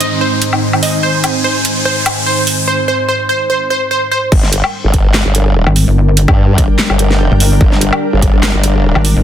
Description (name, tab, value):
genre	heavy wobble dubstep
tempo	146 BPM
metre	4/4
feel	swing 55% on 16ths, half-time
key	G phrygian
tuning	A4 = 440 Hz
part	wide unison pluck	melody	0.0-4.3 s	C5 to Eb5	-15 LUFS	right 2 dB	tape echo
part	evolving wavetable pad	sustained chords	0.0-9.2 s	Ab2 to Bb4	-19 LUFS	left 1 dB	ensemble chorus, built-in reverb, phaser, sidechain pumping
part	dubstep drum kit	drums	0.0-9.1 s	crash cymbal, handclaps, hi-hat, snare drum, woodblock	-16 LUFS	equal	none
part	riser	sound effects	0.0-2.7 s	none	-18 LUFS	equal	none
part	granular cloud pad	texture	0.0-9.2 s	D4 to Ab5	-22 LUFS	equal	built-in reverb, sidechain pumping
part	formant-sweep wobble bass	bass	4.3-8.9 s	G1 to G2	-12 LUFS	equal	chorus, overdrive
part	electronic kick drum	drums	4.3-8.3 s	none	-11 LUFS	equal	overdrive
part	pulsing pluck wobble bass	bass	5.7-9.2 s	G1 to Ab1	-9 LUFS	equal	chorus, overdrive
room	light reverb, digital ambience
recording	dense, heavily limited modern master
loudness	-10 LUFS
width	side -10 dB against mid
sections	0.0-4.3 A section; 4.3-9.2 B section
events	build-up 0.0-4.3; riser 0.0-2.7; drop 4.3-9.2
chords	0.0 Ab; 4.3 Gm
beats	0.21 0.62 | 1.03 1.44 1.85 2.27 | 2.68 3.09 3.50 3.91 | 4.32 4.73 5.14 5.55 | 5.96 6.38 6.79 7.20 | 7.61 8.02 8.43 8.84